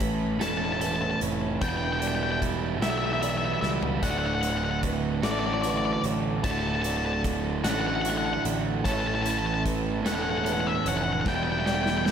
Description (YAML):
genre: post-rock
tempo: 50 BPM (dotted quarters)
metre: 6/8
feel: straight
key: D major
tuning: A4 = 438 Hz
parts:
  - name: felt-muted upright piano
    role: arpeggios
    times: 0.0-12.1 s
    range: A4 to F#5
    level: -39 LUFS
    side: right 2 dB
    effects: tape echo
  - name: twelve-string electric guitar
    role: arpeggios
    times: 0.0-12.1 s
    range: D2 to A4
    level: -37 LUFS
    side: left 7 dB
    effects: none
  - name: crunchy overdriven guitar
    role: riff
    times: 0.0-12.1 s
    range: D2 to A4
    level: -29 LUFS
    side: right 6 dB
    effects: none
  - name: fuzz picked electric bass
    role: bass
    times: 0.0-12.1 s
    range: D1 to C#2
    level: -31 LUFS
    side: left 1 dB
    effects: overdrive
  - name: big rock drum kit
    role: drums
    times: 0.0-12.1 s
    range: hi-hat, kick drum, snare drum, toms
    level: -33 LUFS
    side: equal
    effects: none
  - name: octave-fuzz lead guitar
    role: melody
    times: 0.4-12.1 s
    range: D5 to A5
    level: -30 LUFS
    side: left 5 dB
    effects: distortion, tape echo
room: light reverb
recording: none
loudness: -24 LUFS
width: side -8 dB against mid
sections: 0.0-12.1 A section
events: drum fill 3.6-4.0, 11.3-12.1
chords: 0.0 A; 1.6 Em; 4.0 D; 8.9 A; 11.3 Em